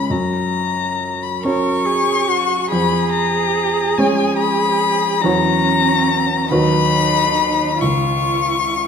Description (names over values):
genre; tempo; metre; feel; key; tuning
classical, slow romantic movement for piano trio; 47 BPM (dotted quarters); 6/8; uneven beats, rubato; F# major; A4 = 436 Hz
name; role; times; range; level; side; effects
warm violin; melody; 0.0-8.9 s; G#5 to C#6; -18 LUFS; left 7 dB; none
warm grand piano; accompaniment; 0.0-8.9 s; C#2 to C#5; -20 LUFS; equal; none
rich cello; second line; 1.4-8.9 s; C#4 to A#4; -20 LUFS; right 6 dB; none
room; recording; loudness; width
wet scoring stage reverb, RT60 1.6 s; none; -15 LUFS; side -6 dB against mid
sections
0.1-8.9 A section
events
none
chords
0.1 F#; 2.7 C#7/E#; 5.2 F#7/E; 6.5 B/D#; 7.8 C#